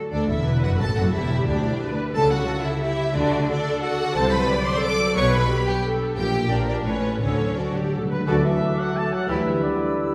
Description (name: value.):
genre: classical.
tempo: 178 BPM.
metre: 3/4.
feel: straight.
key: D major.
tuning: A4 = 440 Hz.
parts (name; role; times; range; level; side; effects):
clear symphonic violin section; second line; 0.0-9.4 s; C#4 to D5; -30 LUFS; equal; none.
warm symphonic viola section; accompaniment; 0.0-9.5 s; E4 to D5; -30 LUFS; equal; none.
concert harp; arpeggios; 0.0-10.1 s; A2 to A5; -32 LUFS; equal; none.
warm studio cello section; bass; 0.0-9.6 s; D2 to A4; -31 LUFS; equal; none.
rich symphonic violin section; melody; 0.1-9.5 s; B4 to D6; -32 LUFS; equal; none.
clear symphonic double bass section; bass; 0.1-9.6 s; E1 to D2; -29 LUFS; equal; none.
timpani; percussion; 7.2-8.3 s; D3; -31 LUFS; equal; none.
bright small flute group; second line; 8.3-10.1 s; D6 to E6; -40 LUFS; equal; none.
mellow clarinet; second line; 8.3-10.1 s; E4 to F#4; -33 LUFS; equal; none.
warm oboe; second line; 8.3-10.1 s; A4 to B4; -35 LUFS; equal; none.
dark bassoon; accompaniment; 8.3-10.1 s; G3 to A3; -32 LUFS; equal; none.
dark French horn section; sustained chords; 8.3-10.1 s; D3 to A3; -30 LUFS; equal; none.
clear trumpet section; stabs; 8.3-10.1 s; D5 to A5; -31 LUFS; equal; none.
room: wet concert hall reverb, RT60 1.9 s.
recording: heard from further back in the room.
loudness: -22 LUFS.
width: mono.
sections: 0.1-8.3 A section; 8.3-10.1 A section.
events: timpani fill 7.2-8.3.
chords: 0.1 D; 1.1 Em7; 2.1 A7/C#; 3.2 D; 4.2 D7/C; 5.2 G/B; 6.2 Gm/Bb; 6.5 Bb7; 6.9 A; 7.2 D; 9.3 Em7/D.